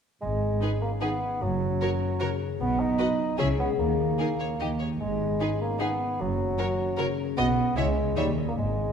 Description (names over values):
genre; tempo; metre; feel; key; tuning
cinematic, playful, whimsical film cue; 151 BPM; 3/4; straight; G# minor; A4 = 440 Hz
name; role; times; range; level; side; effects
mellow bassoon; accompaniment; 0.2-8.9 s; F#3 to D#4; -30 LUFS; right 1 dB; none
concert harp; arpeggios; 0.2-8.9 s; F#2 to E5; -31 LUFS; left 9 dB; none
dark studio double bass section; bass; 0.2-8.9 s; F#1 to D#2; -31 LUFS; right 3 dB; none
warm studio cello section; bass; 0.2-8.9 s; F#2 to D#3; -32 LUFS; right 4 dB; none
rich studio violin section; melody; 0.6-8.2 s; A#4 to E5; -39 LUFS; left 4 dB; none
rich studio violin section; second line; 0.6-8.3 s; G4 to D#5; -36 LUFS; left 1 dB; none
warm studio viola section; accompaniment; 0.6-8.2 s; D#4 to F#4; -36 LUFS; right 2 dB; none
room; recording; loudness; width
wet scoring stage reverb, RT60 1.7 s; none; -24 LUFS; side -7 dB against mid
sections
0.2-8.9 A section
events
none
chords
0.2 G#m; 1.4 F#5; 2.6 B; 3.4 C#m; 3.8 D#sus4; 4.6 D#; 5.0 G#m; 6.2 F#5; 7.4 B5; 7.8 C#m; 8.2 D#(b9)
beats
| 0.22 0.62 1.02 | 1.42 1.81 2.21 | 2.60 2.99 3.39 | 3.79 4.20 4.60 | 5.00 5.41 5.80 | 6.20 6.59 6.98 | 7.38 7.77 8.17 | 8.58